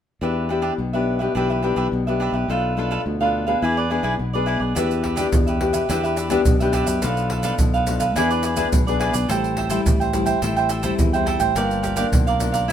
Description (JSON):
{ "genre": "samba and choro", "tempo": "106 BPM", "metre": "4/4", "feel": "straight", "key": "E minor", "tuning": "A4 = 440 Hz", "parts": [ { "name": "cavaquinho", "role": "accompaniment", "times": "0.2-12.7 s", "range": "D4 to G5", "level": "-24 LUFS", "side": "right 4 dB", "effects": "none" }, { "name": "nylon-string guitar", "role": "accompaniment", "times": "0.2-12.7 s", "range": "G2 to G#4", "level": "-23 LUFS", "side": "left 4 dB", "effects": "none" }, { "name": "fingered electric bass", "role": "bass", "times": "0.2-12.7 s", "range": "G1 to F#2", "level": "-25 LUFS", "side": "left 1 dB", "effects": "none" }, { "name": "maracas, surdo and pandeiro", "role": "percussion", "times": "4.8-12.7 s", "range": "none", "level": "-23 LUFS", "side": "right 1 dB", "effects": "none" } ], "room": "moderate studio reverb, RT60 0.9 s", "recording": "minimal, uncompressed stereo recording", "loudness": "-18 LUFS", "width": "side -9 dB against mid", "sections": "0.2-4.8 A section; 4.8-12.7 B section", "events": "none", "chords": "0.2 Em7; 2.5 Bm7b5; 3.6 E7; 4.8 Em7; 7.0 Bm7b5; 8.2 E7; 9.3 Am7; 11.6 Gm7" }